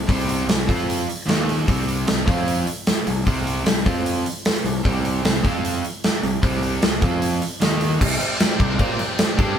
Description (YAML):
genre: hard rock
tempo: 152 BPM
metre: 4/4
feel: straight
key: unclear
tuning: A4 = 440 Hz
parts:
  - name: overdriven semi-hollow guitar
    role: riff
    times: 0.0-9.6 s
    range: C3 to Bb4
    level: -23 LUFS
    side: right 1 dB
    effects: none
  - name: fuzz fingered electric bass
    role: bass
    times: 0.0-9.6 s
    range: C2 to Bb2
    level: -26 LUFS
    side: equal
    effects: overdrive
  - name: big rock drum kit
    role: drums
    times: 0.1-9.5 s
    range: crash cymbal, hi-hat, kick drum, snare drum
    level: -20 LUFS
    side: equal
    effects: none
  - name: overdriven tonewheel organ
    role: sustained chords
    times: 8.0-9.6 s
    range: C4 to D5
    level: -29 LUFS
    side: right 1 dB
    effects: slow rotary speaker, chorus vibrato
room: light reverb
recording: band playing live in one room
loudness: -18 LUFS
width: side -8 dB against mid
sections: 0.0-8.0 A section; 8.0-9.6 B section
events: none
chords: 0.0 C5; 0.7 F5; 1.3 Eb5; 1.7 C5; 2.3 F5; 3.1 C5; 3.9 F5; 4.6 C5; 5.4 F5; 6.2 C5; 7.0 F5; 7.6 Eb5; 8.0 C5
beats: | 0.09 0.48 0.88 1.28 | 1.67 2.07 2.47 2.86 | 3.26 3.66 4.05 4.45 | 4.84 5.24 5.64 6.03 | 6.43 6.82 7.22 7.61 | 8.01 8.40 8.79 9.18 | 9.58